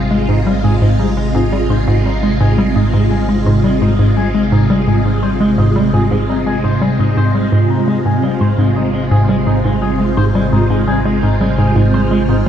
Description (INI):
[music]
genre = ambient, sequencer-driven space music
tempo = 85 BPM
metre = 4/4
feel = straight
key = Ab major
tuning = A4 = 440 Hz
[part]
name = phased string machine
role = sustained chords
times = 0.0-12.5 s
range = C3 to F4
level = -16 LUFS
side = equal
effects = ensemble chorus, phaser
[part]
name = warm sub bass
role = bass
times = 0.0-12.5 s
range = Ab1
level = -22 LUFS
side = equal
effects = none
[part]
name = wind-like tuned noise texture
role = texture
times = 0.0-12.5 s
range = C5 to Eb5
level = -29 LUFS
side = right 1 dB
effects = built-in reverb
[part]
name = electric guitar with an envelope filter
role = arpeggios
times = 0.1-12.5 s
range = Ab3 to C5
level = -24 LUFS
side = left 1 dB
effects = auto-pan, tape echo
[part]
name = hollow square pluck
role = riff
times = 0.1-12.5 s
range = Ab2 to Ab3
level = -14 LUFS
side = equal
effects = chorus, tape echo
[sound]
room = wet cathedral reverb, RT60 5.5 s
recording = in a vast, echoing space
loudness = -11 LUFS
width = side -9 dB against mid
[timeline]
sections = 0.0-12.5 A section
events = none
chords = 0.0 Ab